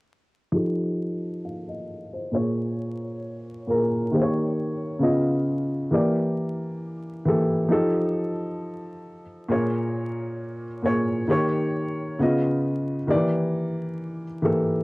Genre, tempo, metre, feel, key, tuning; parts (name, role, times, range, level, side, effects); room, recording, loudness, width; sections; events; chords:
hip hop; 67 BPM; 4/4; swing 58% on 16ths; Bb dorian; A4 = 440 Hz
dark upright piano; accompaniment; 0.5-14.8 s; Bb2 to F5; -23 LUFS; equal; low-pass filter, cassette tape
moderate booth ambience, RT60 0.2 s; home recording on cassette, vinyl crackle; -22 LUFS; side -23 dB against mid
0.5-14.8 A section
filter sweep on upright piano 0.5-14.8
0.5 F9; 2.3 Bbm7; 4.1 Eb7; 5.0 Db9; 5.9 Em7b5; 7.7 F9; 9.5 Bbm7; 11.3 Eb7; 12.2 Db9; 13.1 Em7b5